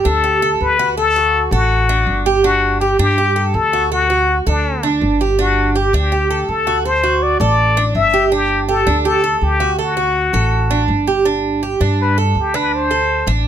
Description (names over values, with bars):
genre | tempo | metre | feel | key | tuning
latin, Cuban son and guajira | 164 BPM | 4/4 | straight | unclear | A4 = 440 Hz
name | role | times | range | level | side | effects
Cuban tres | arpeggios | 0.0-13.5 s | D4 to A4 | -18 LUFS | right 5 dB | none
upright bass | bass | 0.0-13.5 s | G1 to G2 | -19 LUFS | equal | none
trumpet with plunger mute | melody | 0.1-13.3 s | D4 to E5 | -16 LUFS | left 4 dB | none
room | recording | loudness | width
light reverb | close, detailed microphones | -13 LUFS | side -9 dB against mid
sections
0.0-11.3 A section; 11.3-13.5 B section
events
muted trumpet solo 11.3-13.5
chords
0.0 Gsus2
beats
0.24 0.61 | 0.98 1.34 1.71 2.08 | 2.45 2.81 3.18 3.55 | 3.92 4.28 4.65 5.02 | 5.38 5.75 6.12 6.49 | 6.85 7.22 7.59 7.95 | 8.32 8.69 9.05 9.42 | 9.79 10.15 10.52 10.89 | 11.26 11.62 11.99 12.36 | 12.72 13.09 13.46